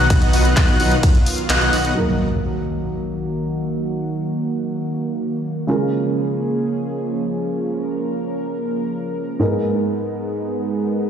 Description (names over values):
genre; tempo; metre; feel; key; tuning
EDM, festival progressive house; free time; none; none; Eb minor; A4 = 440 Hz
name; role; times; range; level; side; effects
lush unison pad; sustained chords; 0.0-11.1 s; D#3 to Bb4; -23 LUFS; right 1 dB; chorus, sidechain pumping
wide unison lead; arpeggios; 0.0-1.9 s; F#6; -24 LUFS; left 2 dB; lush chorus, sidechain pumping, digital delay
dense compressed supersaw; riff; 0.0-1.9 s; B3 to F#5; -22 LUFS; right 1 dB; sidechain pumping, low-pass filter, digital delay
wide detuned saw bass; bass; 0.0-1.9 s; B1; -19 LUFS; equal; chorus, sidechain pumping
big-room dance drum kit; drums; 0.1-1.9 s; handclaps, hi-hat, ride cymbal; -24 LUFS; left 1 dB; low-pass filter on hats, low-pass filter on cymbals, low-pass filter on snare
electronic kick drum; drums; 0.1-1.1 s; none; -15 LUFS; equal; none
dark concert grand piano; accompaniment; 2.0-11.1 s; Ab2 to Bb4; -24 LUFS; right 2 dB; sidechain pumping, digital delay
impact; sound effects; 2.0-3.8 s; none; -26 LUFS; equal; none
room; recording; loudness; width
moderate digital room reverb, RT60 1.1 s; played on a big sound system in a bare room, large studio reverb; -18 LUFS; side -8 dB against mid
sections
0.0-2.0 A section; 2.0-11.1 B section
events
drop 0.0-2.0; kick drops out 1.5-2.0; band accent 1.5; impact 2.0-3.8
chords
0.0 B; 2.0 Ebm; 5.7 Db6; 9.4 Abmadd9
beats
free time